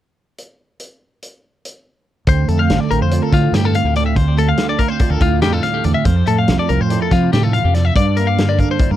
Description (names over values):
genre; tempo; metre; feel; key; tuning
math rock and midwest emo; 285 BPM (eighths); 9/8; straight; D minor; A4 = 442 Hz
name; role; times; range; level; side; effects
loose indie drum kit; drums; 0.4-8.9 s; hi-hat, kick drum, snare drum; -19 LUFS; equal; none
clean electric guitar; accompaniment; 2.3-9.0 s; D2 to F4; -19 LUFS; right 6 dB; ensemble chorus
twelve-string electric guitar; arpeggios; 2.3-9.0 s; F4 to F5; -20 LUFS; left 7 dB; tape echo
growling fingered electric bass; bass; 2.3-9.0 s; A1 to F3; -16 LUFS; equal; overdrive
room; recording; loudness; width
little or no reverb; dry, close 1970s-style studio recording; -13 LUFS; side -12 dB against mid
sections
0.4-2.3 A section; 2.3-9.0 B section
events
none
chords
0.4 N.C.; 2.3 Dm7; 6.1 Fmaj7; 8.0 Gm7